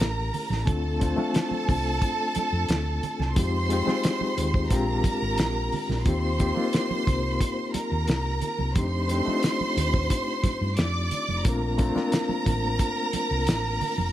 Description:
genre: lush 1970s-style soul.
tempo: 89 BPM.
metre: 4/4.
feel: straight.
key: Bb major.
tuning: A4 = 440 Hz.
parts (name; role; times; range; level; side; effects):
warm symphonic violin section; second line; 0.0-14.1 s; A4 to D6; -29 LUFS; right 2 dB; none.
reed electric piano; accompaniment; 0.0-14.1 s; Ab3 to C5; -29 LUFS; left 3 dB; fast tremolo.
hollow-body short-scale fingered electric bass; bass; 0.0-14.1 s; F1 to G2; -28 LUFS; equal; none.
cloth-damped thuddy drum kit; drums; 0.0-14.0 s; hi-hat, kick drum, snare drum; -27 LUFS; equal; none.
congas; percussion; 0.3-14.1 s; none; -35 LUFS; right 6 dB; none.
room: studio reverb.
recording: none.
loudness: -23 LUFS.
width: side -13 dB against mid.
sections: 0.0-14.1 A section.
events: none.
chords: 0.0 A7b9; 0.7 Dm7; 3.4 Fm7; 4.7 Bb13; 6.1 Eb69; 8.8 F13; 11.5 Bbmaj9.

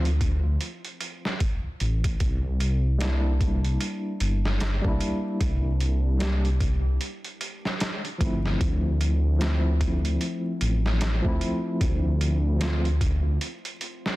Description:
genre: trip hop.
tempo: 75 BPM.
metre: 4/4.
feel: swing 60% on 16ths.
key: D minor.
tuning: A4 = 439 Hz.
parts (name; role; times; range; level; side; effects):
mellow tine electric piano; accompaniment; 0.0-12.9 s; F3 to G4; -30 LUFS; equal; overdrive, tremolo, low-pass filter, tape echo.
dark detuned saw bass; bass; 0.0-13.4 s; G1 to D2; -24 LUFS; equal; none.
trip hop sampler-style drum kit; drums; 0.1-14.2 s; hi-hat, kick drum, snare drum; -28 LUFS; equal; none.
room: little or no reverb.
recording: dense, heavily limited modern master, vinyl crackle.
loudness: -23 LUFS.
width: side -18 dB against mid.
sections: 0.0-14.2 A section.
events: filter sweep on tine electric piano 0.0-14.2.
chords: 0.0 D5; 2.2 C7; 8.6 Dm9.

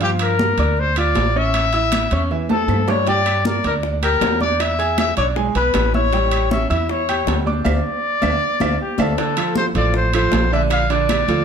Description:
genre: latin, salsa.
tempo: 157 BPM.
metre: 4/4.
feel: straight.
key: D minor.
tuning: A4 = 439 Hz.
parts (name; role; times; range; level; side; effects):
warm trumpet; melody; 0.0-11.4 s; G4 to F5; -20 LUFS; left 3 dB; none.
clear grand piano; accompaniment; 0.0-11.4 s; D3 to G#6; -22 LUFS; right 4 dB; none.
upright bass; bass; 0.0-11.4 s; A1 to G2; -21 LUFS; equal; none.
congas; percussion; 0.0-11.4 s; none; -26 LUFS; left 1 dB; none.
timbales; percussion; 0.0-11.4 s; none; -27 LUFS; right 4 dB; none.
claves; percussion; 0.2-11.3 s; none; -34 LUFS; right 6 dB; none.
bongos; percussion; 3.1-11.4 s; none; -30 LUFS; left 7 dB; none.
room: light reverb.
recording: none.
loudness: -16 LUFS.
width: side -7 dB against mid.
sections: 0.0-9.2 A section; 9.2-11.4 B section.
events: drum fill 2.5-3.1, 7.7-9.2; band accent 7.7-9.2.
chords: 0.0 Gm7; 1.5 A; 3.1 Gm; 4.6 E7; 6.1 A7; 7.7 Dmadd9; 9.2 Dm7; 10.7 Bbmaj7.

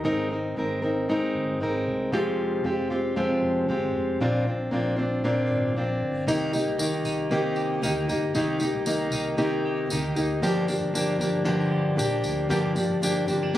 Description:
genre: acoustic pop.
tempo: 116 BPM.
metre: 4/4.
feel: swing 55% on 16ths.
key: C minor.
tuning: A4 = 440 Hz.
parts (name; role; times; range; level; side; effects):
fingerpicked plugged-in steel-string acoustic guitar; accompaniment; 0.0-13.6 s; F2 to Bb4; -24 LUFS; equal; none.
vintage muted fingered electric bass; bass; 0.0-13.6 s; F1 to D2; -33 LUFS; equal; none.
clean electric guitar; arpeggios; 6.3-13.6 s; F3 to G4; -35 LUFS; right 3 dB; none.
tambourine; percussion; 6.3-13.4 s; none; -35 LUFS; equal; none.
room: light reverb.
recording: recorded on a phone in the room, club reverb.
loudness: -23 LUFS.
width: side -13 dB against mid.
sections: 0.0-6.3 A section; 6.3-13.6 B section.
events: none.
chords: 0.1 Abadd9; 2.1 Fmadd9; 4.2 Bbadd9; 6.3 Cm7; 10.4 Gm7.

